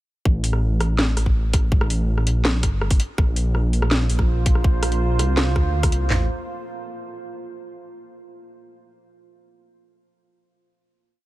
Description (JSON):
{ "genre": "half-time drum and bass", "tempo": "164 BPM", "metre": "4/4", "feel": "half-time", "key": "unclear", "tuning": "A4 = 441 Hz", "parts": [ { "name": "dark detuned saw bass", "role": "bass", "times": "0.3-6.3 s", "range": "G1 to D2", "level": "-20 LUFS", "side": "equal", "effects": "none" }, { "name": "drum and bass drum kit", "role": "drums", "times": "0.3-6.2 s", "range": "handclaps, kick drum, snare drum, toms", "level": "-19 LUFS", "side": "equal", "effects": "none" }, { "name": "drum and bass drum kit", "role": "drums", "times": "0.4-6.0 s", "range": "hi-hat, rim click, snare drum", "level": "-25 LUFS", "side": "equal", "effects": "none" }, { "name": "deep dark ambient pad", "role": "sustained chords", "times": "3.8-6.3 s", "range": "Bb3 to C5", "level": "-30 LUFS", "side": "right 5 dB", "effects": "chorus, built-in reverb, vintage 12-bit sampler grit, sidechain pumping" } ], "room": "little or no reverb", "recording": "none", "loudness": "-18 LUFS", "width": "side -17 dB against mid", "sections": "0.3-6.1 drop; 6.1-7.6 final chord", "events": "drop 0.3-6.1", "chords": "0.3 Gmadd9; 3.2 Bb; 6.1 A5" }